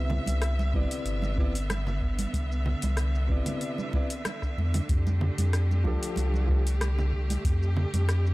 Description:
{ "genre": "sunset chillout", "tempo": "94 BPM", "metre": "4/4", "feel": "swing 54% on 16ths", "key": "unclear", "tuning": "A4 = 445 Hz", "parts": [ { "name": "warm concert grand piano", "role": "accompaniment", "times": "0.0-6.6 s", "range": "C3 to E5", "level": "-36 LUFS", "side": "left 1 dB", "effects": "auto-pan, tape echo" }, { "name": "clear studio string section", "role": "sustained chords", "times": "0.0-8.3 s", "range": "D3 to E5", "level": "-36 LUFS", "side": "right 1 dB", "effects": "none" }, { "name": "warm sub bass", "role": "bass", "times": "0.0-8.3 s", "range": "G1 to F2", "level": "-26 LUFS", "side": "equal", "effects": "none" }, { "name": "smooth R&B drum kit", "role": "drums", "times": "0.1-8.3 s", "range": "congas, hi-hat, rim click, shaker", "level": "-35 LUFS", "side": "right 1 dB", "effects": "none" }, { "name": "congas", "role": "percussion", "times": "0.1-8.1 s", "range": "none", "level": "-37 LUFS", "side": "right 4 dB", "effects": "none" }, { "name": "electronic kick drum", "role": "drums", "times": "0.7-7.6 s", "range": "none", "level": "-29 LUFS", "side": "equal", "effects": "none" } ], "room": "studio ambience", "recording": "dry, gritty hardware recording", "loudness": "-25 LUFS", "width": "side -20 dB against mid", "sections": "0.0-8.3 A section", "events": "none", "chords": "0.0 Cmaj9; 4.9 F69", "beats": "0.42 1.06 1.70 | 2.34 2.98 3.62 4.25 | 4.89 5.53 6.17 6.81 | 7.44 8.08" }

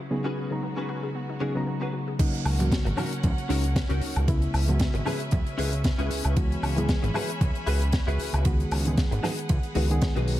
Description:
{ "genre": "nu-disco, nu disco", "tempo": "115 BPM", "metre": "4/4", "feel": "swing 55% on 16ths", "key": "unclear", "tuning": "A4 = 440 Hz", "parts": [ { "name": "reed electric piano", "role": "accompaniment", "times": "0.0-10.4 s", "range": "C#3 to A#5", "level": "-31 LUFS", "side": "equal", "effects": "tape echo" }, { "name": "clear symphonic string section", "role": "sustained chords", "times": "0.0-10.4 s", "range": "C#3 to B5", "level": "-37 LUFS", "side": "equal", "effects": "vintage 12-bit sampler grit, sidechain pumping" }, { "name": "analog pluck", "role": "arpeggios", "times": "0.0-2.1 s", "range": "B3 to G#4", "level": "-39 LUFS", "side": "left 1 dB", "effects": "chorus, vintage 12-bit sampler grit, sidechain pumping, tape echo" }, { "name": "direct-recorded clean electric guitar", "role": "riff", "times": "0.0-10.4 s", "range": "C#4 to B4", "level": "-34 LUFS", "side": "left 2 dB", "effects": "ensemble chorus, tape echo" }, { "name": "electronic kick drum", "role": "drums", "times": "2.2-10.1 s", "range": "none", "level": "-25 LUFS", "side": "equal", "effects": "overdrive" }, { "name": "tight funk drum kit", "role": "drums", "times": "2.2-10.4 s", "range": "crash cymbal, hi-hat, ride cymbal, snare drum, woodblock", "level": "-33 LUFS", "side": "left 1 dB", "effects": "low-pass filter on cymbals, low-pass filter on hats, low-pass filter on snare, low-pass filter on perc, low-pass filter on room" }, { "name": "tube shaker and congas", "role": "percussion", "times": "2.2-10.4 s", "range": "none", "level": "-35 LUFS", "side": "right 2 dB", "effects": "none" }, { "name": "fat analog bass", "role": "bass", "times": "2.5-10.4 s", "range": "G#1 to C#2", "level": "-26 LUFS", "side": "equal", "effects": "none" } ], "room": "studio reverb", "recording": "dark, warm production", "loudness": "-23 LUFS", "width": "side -14 dB against mid", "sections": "0.0-2.2 A section; 2.2-10.4 B section", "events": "filter sweep on reed electric piano 0.0-2.2; filter sweep on synth arpeggio sound 0.0-2.2; drop 2.2-10.4", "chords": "0.1 G#m7/C#; 2.2 D#m7; 4.3 F#9sus4; 8.5 G#m7", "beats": "| 0.11 0.63 1.15 1.67 | 2.19 2.72 3.24 3.76 | 4.28 4.80 5.33 5.85 | 6.37 6.89 7.41 7.93 | 8.46 8.98 9.50 10.02" }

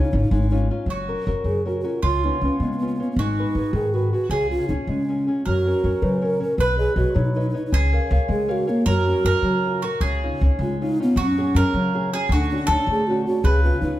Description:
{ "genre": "italian folk, Italian serenade", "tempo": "106 BPM (dotted quarters)", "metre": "6/8", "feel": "straight", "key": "F# major", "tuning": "A4 = 440 Hz", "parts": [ { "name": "breathy bass ocarina", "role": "melody", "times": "0.0-14.0 s", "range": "A#3 to B4", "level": "-23 LUFS", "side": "right 1 dB", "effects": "none" }, { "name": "nylon-string guitar", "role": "accompaniment", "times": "0.0-14.0 s", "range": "Db3 to E#5", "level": "-27 LUFS", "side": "left 3 dB", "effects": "none" }, { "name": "upright bass", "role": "bass", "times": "0.1-13.9 s", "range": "F#1 to F#3", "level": "-22 LUFS", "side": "equal", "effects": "none" }, { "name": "bowl-back mandolin", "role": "second line", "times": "0.9-14.0 s", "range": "E#4 to B4", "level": "-27 LUFS", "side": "right 3 dB", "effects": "none" } ], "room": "moderate recital hall reverb, RT60 1.5 s", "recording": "none", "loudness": "-19 LUFS", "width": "side -14 dB against mid", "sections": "0.9-14.0 A section", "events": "none", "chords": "0.0 Dbadd9; 0.9 F#; 2.0 C#7; 3.2 G#m7; 4.3 C#; 5.5 F#; 6.6 Badd9; 7.7 C#6; 8.9 F#maj7; 10.0 C#add9; 11.2 F#sus2; 12.3 Dmaj7; 13.4 C#7", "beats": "0.32 | 0.89 1.47 | 2.04 2.61 | 3.17 3.74 | 4.30 4.88 | 5.46 6.03 | 6.60 7.17 | 7.73 8.29 | 8.87 9.45 | 10.03 10.61 | 11.18 11.75 | 12.31 12.88 | 13.45" }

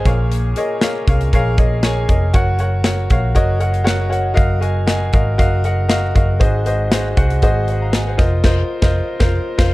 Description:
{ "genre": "piano-driven pop", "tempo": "118 BPM", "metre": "4/4", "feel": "straight", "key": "Bb minor", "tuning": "A4 = 440 Hz", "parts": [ { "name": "bright upright piano", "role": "accompaniment", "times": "0.0-9.7 s", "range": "Ab2 to Bb5", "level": "-20 LUFS", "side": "left 1 dB", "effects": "none" }, { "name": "hollow-body short-scale picked electric bass", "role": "bass", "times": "0.1-9.7 s", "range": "F1 to C2", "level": "-18 LUFS", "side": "equal", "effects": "none" }, { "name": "modern studio drum kit", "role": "drums", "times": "0.1-9.7 s", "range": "crash cymbal, hi-hat, kick drum, snare drum", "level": "-17 LUFS", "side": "equal", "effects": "none" } ], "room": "light reverb, studio reverb", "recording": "dark, warm production", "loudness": "-14 LUFS", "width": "side -19 dB against mid", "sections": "0.0-9.7 A section", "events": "band accent 8.4-9.7; drum fill 9.5; upright piano fill 9.5", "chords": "0.1 Bbm7; 2.3 Gb; 4.4 Ebmadd9/Gb; 6.4 Ab7; 8.2 F7sus4", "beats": "| 0.31 0.82 1.32 1.83 | 2.34 2.85 3.36 3.87 | 4.38 4.88 5.39 5.90 | 6.41 6.92 7.43 7.93 | 8.44 8.95 9.46" }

